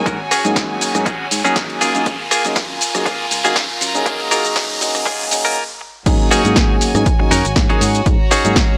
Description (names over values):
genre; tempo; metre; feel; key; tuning
filtered disco house; 120 BPM; 4/4; swing 54% on 16ths; unclear; A4 = 441 Hz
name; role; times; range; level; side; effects
dark grand piano; accompaniment; 0.0-8.5 s; Gb3 to Ab4; -23 LUFS; equal; phaser, sidechain pumping, low-pass filter
clear studio violin section; sustained chords; 0.0-8.8 s; F4 to Bb5; -26 LUFS; equal; sidechain pumping, low-pass filter
riser; sound effects; 0.0-5.6 s; none; -26 LUFS; equal; none
direct-recorded clean electric guitar; riff; 0.1-8.8 s; Bb3 to Bb4; -21 LUFS; equal; vintage 12-bit sampler grit, sidechain pumping, low-pass filter
fingered electric bass; bass; 0.1-8.8 s; Gb1 to Ab2; -25 LUFS; equal; transformer saturation, sidechain pumping, low-pass filter
electronic kick drum; drums; 0.1-8.7 s; none; -20 LUFS; equal; none
punchy analog drum machine; drums; 0.1-8.7 s; crash cymbal, hi-hat, rim click, shaker, snare drum; -22 LUFS; equal; sidechain pumping on hats, high-pass filter on hats, high-pass filter on snare, sidechain pumping on perc, high-pass filter on perc, sidechain pumping on cymbals, high-pass filter on cymbals
room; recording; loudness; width
little or no reverb; dry, gritty hardware recording, transformer saturation, high-pass filter; -16 LUFS; mono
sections
0.0-6.1 A section; 6.1-8.8 B section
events
build-up 0.0-6.1; riser 0.0-5.6; break 5.6-6.1; drop 6.1-8.8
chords
0.0 Ab7sus4; 1.8 Gbmaj9; 6.1 Ab7sus4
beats
| 0.06 0.56 1.06 1.56 | 2.06 2.56 3.06 3.56 | 4.06 4.56 5.06 5.56 | 6.06 6.56 7.06 7.56 | 8.06 8.56